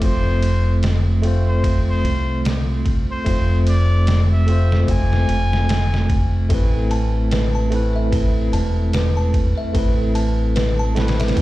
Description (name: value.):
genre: trip hop.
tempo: 74 BPM.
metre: 4/4.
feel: swing 58% on 16ths.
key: unclear.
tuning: A4 = 438 Hz.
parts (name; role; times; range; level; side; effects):
trumpet with straight mute; melody; 0.0-6.4 s; C5 to G#5; -28 LUFS; left 1 dB; tape echo.
tine electric piano; accompaniment; 0.0-11.4 s; A3 to C5; -24 LUFS; right 1 dB; medium stereo tremolo, harmonic tremolo, tape echo.
deep dub fingered electric bass; bass; 0.0-11.4 s; E1 to C2; -18 LUFS; equal; tube saturation.
trip hop sampler-style drum kit; drums; 0.0-11.4 s; kick drum, ride cymbal, snare drum; -23 LUFS; equal; none.
music box; arpeggios; 6.5-11.4 s; A4 to A5; -28 LUFS; left 3 dB; vintage 12-bit sampler grit, digital delay.
room: digital ambience.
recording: played on a big sound system in a bare room, large studio reverb.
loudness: -16 LUFS.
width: side -17 dB against mid.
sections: 0.0-11.4 A section.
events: none.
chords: 0.0 F; 6.5 Amadd9.